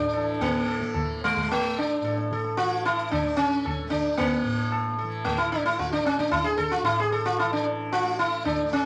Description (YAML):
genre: indian classical, Hindustani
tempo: 112 BPM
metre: 5/4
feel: straight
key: A raga bhairav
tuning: A4 = 441 Hz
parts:
  - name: sitar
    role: melody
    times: 0.0-8.9 s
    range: G#3 to A4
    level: -27 LUFS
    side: equal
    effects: none
  - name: tanpura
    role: drone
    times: 0.0-8.9 s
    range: A2 to A3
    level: -35 LUFS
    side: equal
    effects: none
  - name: tabla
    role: percussion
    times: 0.4-8.9 s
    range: none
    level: -36 LUFS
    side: equal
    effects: none
room: wet studio reverb, RT60 0.6 s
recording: vinyl crackle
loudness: -26 LUFS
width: mono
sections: 0.0-8.9 A section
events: none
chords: none